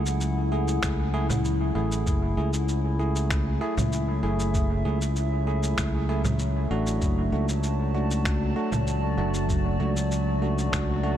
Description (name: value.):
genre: ambient dub.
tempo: 97 BPM.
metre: 4/4.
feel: straight.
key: F# minor.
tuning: A4 = 440 Hz.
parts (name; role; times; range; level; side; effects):
warbly tape-like pad; sustained chords; 0.0-11.2 s; F#3 to A5; -31 LUFS; left 1 dB; chorus, built-in reverb.
bell-like tine electric piano; stabs; 0.0-11.2 s; A3 to G#4; -31 LUFS; right 2 dB; dub echo.
fingered electric bass; bass; 0.0-11.2 s; F#1 to C#2; -26 LUFS; equal; tube saturation.
electronic cabasa, finger snaps and congas; drums; 0.1-10.9 s; none; -33 LUFS; right 1 dB; studio reverb, dub echo.
electronic kick drum; drums; 0.8-10.9 s; none; -28 LUFS; equal; studio reverb.
room: light reverb, digital ambience.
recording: none.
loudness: -23 LUFS.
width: side -10 dB against mid.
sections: 0.0-11.2 A section.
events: none.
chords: 0.0 F#m7.